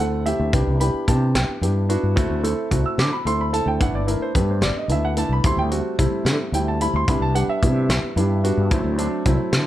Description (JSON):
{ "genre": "electric jazz fusion", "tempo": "73 BPM (dotted quarters)", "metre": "6/8", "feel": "straight", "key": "C lydian", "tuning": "A4 = 440 Hz", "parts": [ { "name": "dark baby grand piano", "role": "accompaniment", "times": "0.0-9.7 s", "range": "F#3 to E6", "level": "-22 LUFS", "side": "right 1 dB", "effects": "none" }, { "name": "fretless electric bass", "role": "bass", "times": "0.0-9.6 s", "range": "G1 to D3", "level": "-21 LUFS", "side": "equal", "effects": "none" }, { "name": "tight funk drum kit", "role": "drums", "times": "0.3-9.7 s", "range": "hi-hat, kick drum, snare drum", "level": "-23 LUFS", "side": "equal", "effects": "none" } ], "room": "light reverb", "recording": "none", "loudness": "-18 LUFS", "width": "side -13 dB against mid", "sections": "0.0-9.7 A section", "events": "none", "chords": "0.0 D9sus4; 0.5 Cmaj9; 3.8 G6; 5.4 D9sus4; 8.7 D7", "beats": "| 0.53 1.35 | 2.17 2.98 | 3.80 4.62 | 5.44 6.26 | 7.08 7.89 | 8.71 9.53" }